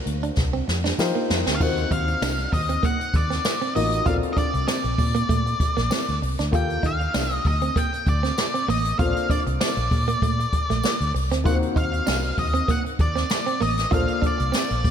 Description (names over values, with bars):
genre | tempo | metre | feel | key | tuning
polished 1980s jazz-funk pop | 98 BPM | 4/4 | swing 54% on 16ths | unclear | A4 = 440 Hz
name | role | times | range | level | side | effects
octave-fuzz lead guitar | melody | 0.0-14.9 s | D5 to A#5 | -26 LUFS | left 1 dB | distortion, slapback echo
dark grand piano | accompaniment | 0.0-14.9 s | Bb3 to F5 | -30 LUFS | left 4 dB | wide subtle chorus, slapback echo
vintage muted fingered electric bass | bass | 0.1-14.9 s | A1 to F3 | -25 LUFS | equal | none
jazz brush drum kit | drums | 0.1-14.9 s | crash cymbal, hi-hat, kick drum, snare drum | -24 LUFS | equal | none
direct-recorded clean electric guitar | riff | 0.2-14.7 s | A3 to F4 | -30 LUFS | right 7 dB | lush chorus
tambourine | percussion | 1.0-14.7 s | none | -42 LUFS | left 6 dB | none
room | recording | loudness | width
light reverb, small room ambience | none | -20 LUFS | side -8 dB against mid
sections
0.0-1.6 A section; 1.6-14.9 B section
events
drum fill 0.4-1.6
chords
0.0 D7alt; 1.0 F9sus4; 1.6 Ebm6; 4.1 Bbmaj9; 6.5 Ebmaj9#11; 9.0 Bbmaj9; 11.5 Ebm6; 13.9 Bbmaj9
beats
0.37 0.99 | 1.60 2.22 2.84 3.45 | 4.07 4.68 5.30 5.91 | 6.53 7.14 7.76 8.37 | 8.99 9.61 10.22 10.84 | 11.45 12.07 12.68 13.30 | 13.91 14.53